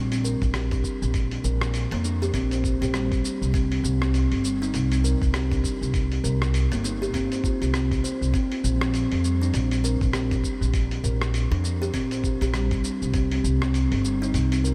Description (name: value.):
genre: organic downtempo.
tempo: 100 BPM.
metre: 4/4.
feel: swing 59% on 16ths.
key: unclear.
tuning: A4 = 440 Hz.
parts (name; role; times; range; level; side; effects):
upright bass; bass; 0.0-14.7 s; G1 to F2; -27 LUFS; equal; sidechain pumping.
kalimba; arpeggios; 0.1-14.7 s; G3 to C5; -29 LUFS; equal; analog delay.
dusty soul sampler-style drum kit; drums; 0.1-14.7 s; cabasa, hi-hat, rim click; -36 LUFS; equal; none.
electronic kick drum; drums; 0.4-13.3 s; none; -29 LUFS; equal; none.
room: light reverb.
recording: none.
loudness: -24 LUFS.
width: mono.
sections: 0.0-14.7 A section.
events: none.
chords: 0.0 Bb6; 3.5 Csus2; 8.3 Bb6; 13.1 C5.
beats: 0.54 | 1.14 1.74 2.34 2.94 | 3.54 4.14 4.74 5.34 | 5.94 6.54 7.14 7.74 | 8.34 8.94 9.54 10.14 | 10.74 11.34 11.94 12.54 | 13.14 13.74 14.34.